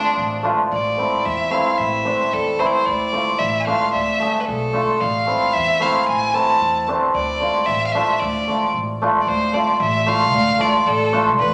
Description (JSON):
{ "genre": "klezmer", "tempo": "112 BPM", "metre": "2/4", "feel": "straight", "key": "D dorian sharp4", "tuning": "A4 = 439 Hz", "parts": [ { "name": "bright violin", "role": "melody", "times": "0.0-11.5 s", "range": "D4 to A5", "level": "-23 LUFS", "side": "equal", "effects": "none" }, { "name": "cimbalom", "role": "accompaniment", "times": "0.0-11.3 s", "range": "A3 to G#4", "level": "-21 LUFS", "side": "equal", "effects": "none" }, { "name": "upright bass", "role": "bass", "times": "0.2-11.5 s", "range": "A1 to E2", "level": "-31 LUFS", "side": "equal", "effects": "none" } ], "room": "wet large studio reverb, RT60 1.2 s", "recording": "nothing above 10.9 kHz", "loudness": "-19 LUFS", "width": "mono", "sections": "0.7-9.3 A section; 9.3-11.5 B section", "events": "none", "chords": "0.0 Dm; 0.7 Am; 2.9 Dm; 5.0 Am; 7.2 Dm" }